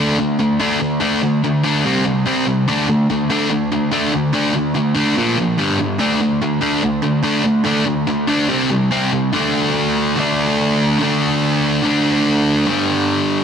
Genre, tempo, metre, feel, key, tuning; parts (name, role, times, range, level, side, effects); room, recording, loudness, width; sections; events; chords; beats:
rock; 144 BPM; 4/4; straight; A4 = 440 Hz
sludgy distorted guitar; solo; 0.0-13.4 s; G2 to D4; -15 LUFS; equal; overdrive, tape echo
light reverb; dense, heavily limited modern master; -15 LUFS; side -7 dB against mid
0.0-9.3 A section; 9.3-13.4 B section
0.0 D5; 1.8 C5; 2.7 D5; 5.2 Bb5; 5.6 G5; 6.0 D5; 8.5 C5; 9.3 D5; 12.7 G5
0.17 0.59 | 1.01 1.43 1.84 2.26 | 2.68 3.09 3.51 3.93 | 4.34 4.76 5.18 5.59 | 6.01 6.42 6.84 7.26 | 7.67 8.09 8.51 8.92 | 9.34 9.76 10.17 10.59 | 11.00 11.42 11.84 12.25 | 12.67 13.09